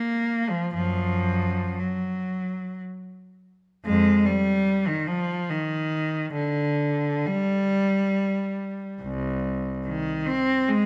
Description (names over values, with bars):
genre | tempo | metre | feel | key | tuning
classical, free, expressive piece for unaccompanied cello | 51-76 BPM | 3/4 | rubato | F dorian | A4 = 440 Hz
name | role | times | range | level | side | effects
clear cello | solo | 0.0-10.9 s | C2 to C4 | -25 LUFS | equal | none
room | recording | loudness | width
moderate recital hall reverb, RT60 1.5 s | none | -25 LUFS | mono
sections
0.0-3.8 A section; 3.8-10.9 B section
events
none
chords
none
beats
| 0.74 1.80 2.81 | 3.85 4.67 5.50 | 6.33 7.26 8.12 | 9.03 9.88 10.68